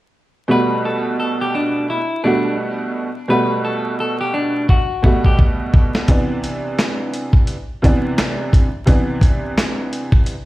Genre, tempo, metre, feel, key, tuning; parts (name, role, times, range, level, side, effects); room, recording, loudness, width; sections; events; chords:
hip hop, boom-bap hip-hop; 86 BPM; 4/4; swing 59% on 16ths; G major; A4 = 440 Hz
clean electric guitar; melody; 0.5-5.4 s; D4 to B4; -21 LUFS; left 2 dB; high-pass filter, low-pass filter, tape echo
clear upright piano; accompaniment; 0.5-10.3 s; B2 to F#4; -20 LUFS; right 1 dB; high-pass filter, low-pass filter
dusty soul sampler-style drum kit; drums; 4.7-10.5 s; handclaps, hi-hat, kick drum, snare drum; -14 LUFS; equal
light reverb; played on a big sound system in a bare room, stone room reverb, vinyl crackle; -15 LUFS; side -17 dB against mid
0.5-10.5 A section
drum fill 4.7-6.1
0.5 Gmaj9; 6.1 Cmaj9